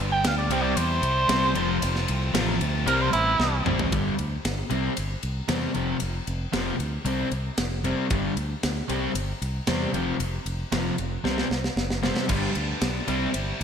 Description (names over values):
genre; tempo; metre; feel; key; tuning
hard rock; 115 BPM; 4/4; straight; unclear; A4 = 440 Hz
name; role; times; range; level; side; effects
distorted electric guitar; riff; 0.0-3.9, 12.3-13.6 s; G2 to F4; -31 LUFS; left 1 dB; overdrive, slapback echo
fingered electric bass; bass; 0.0-13.6 s; F1 to E2; -29 LUFS; equal; none
trumpet with cup mute; melody; 0.1-3.6 s; E4 to G5; -25 LUFS; right 3 dB; slapback echo
tight metal drum kit; drums; 0.2-13.6 s; crash cymbal, kick drum, ride cymbal, snare drum, toms; -30 LUFS; equal; none
overdriven electric guitar; riff; 0.5-13.3 s; F2 to C4; -30 LUFS; left 9 dB; none
overdriven electric guitar; riff; 0.5-13.3 s; F2 to C4; -32 LUFS; right 9 dB; slapback echo
room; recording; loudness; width
moderate lush hall reverb, RT60 1.9 s, studio reverb; big arena sound; -23 LUFS; side -7 dB against mid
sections
0.0-3.9 A section; 3.9-13.6 B section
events
muted trumpet solo 0.0-3.9; drum fill 3.4-3.9, 11.3-12.3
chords
0.0 G; 0.5 C; 1.6 F; 2.9 C; 3.9 G5; 4.7 C; 5.8 F5; 7.1 C5; 8.1 G5; 8.9 C; 9.9 F5; 11.3 C5; 12.3 G; 13.1 C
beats
0.25 0.78 1.30 | 1.82 2.35 2.87 3.39 | 3.92 4.44 4.97 5.49 | 6.01 6.54 7.06 7.59 | 8.11 8.63 9.16 9.68 | 10.21 10.73 11.25 11.78 | 12.30 12.82 13.34